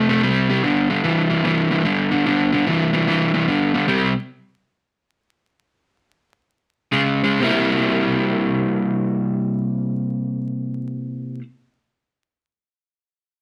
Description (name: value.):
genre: blues.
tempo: 118-148 BPM.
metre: 4/4.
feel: swing 65% on 8ths.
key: C mixolydian.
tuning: A4 = 437 Hz.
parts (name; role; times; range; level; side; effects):
overdriven semi-hollow guitar; solo; 0.0-4.1, 6.9-11.4 s; G2 to E4; -20 LUFS; equal; none.
room: moderate studio reverb, RT60 0.6 s.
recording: vinyl crackle.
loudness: -20 LUFS.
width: mono.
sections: 0.0-7.4 A section; 7.4-11.5 B section.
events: slowing down 3.9-7.4; stop 3.9-6.9.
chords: 0.0 C5; 0.6 G5; 3.9 C5; 6.9 Db5; 7.4 C7.